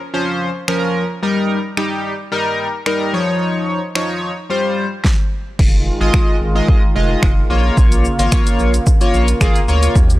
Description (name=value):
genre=dance-pop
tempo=110 BPM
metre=4/4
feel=straight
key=unclear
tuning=A4 = 444 Hz
part: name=chorused polysynth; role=accompaniment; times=0.1-10.0 s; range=F3 to Eb5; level=-18 LUFS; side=left 1 dB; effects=sidechain pumping
part: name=deep house drum kit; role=drums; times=0.7-10.2 s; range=crash cymbal, finger snaps, hi-hat, kick drum, shaker, snare drum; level=-14 LUFS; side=equal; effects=none
part: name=filtered supersaw swell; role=sustained chords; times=5.6-10.2 s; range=Db3 to G4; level=-23 LUFS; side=right 1 dB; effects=sidechain pumping
part: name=round analog bass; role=bass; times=5.6-10.2 s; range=F1 to Eb2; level=-17 LUFS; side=equal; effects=sidechain pumping
room=digital ambience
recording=dry, gritty hardware recording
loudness=-14 LUFS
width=side -16 dB against mid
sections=0.0-5.6 A section; 5.6-10.2 B section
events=none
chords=0.0 Bbm; 1.2 Eb; 3.1 Dbadd9/F; 4.5 Csus4; 5.6 Fm7; 7.5 Bbm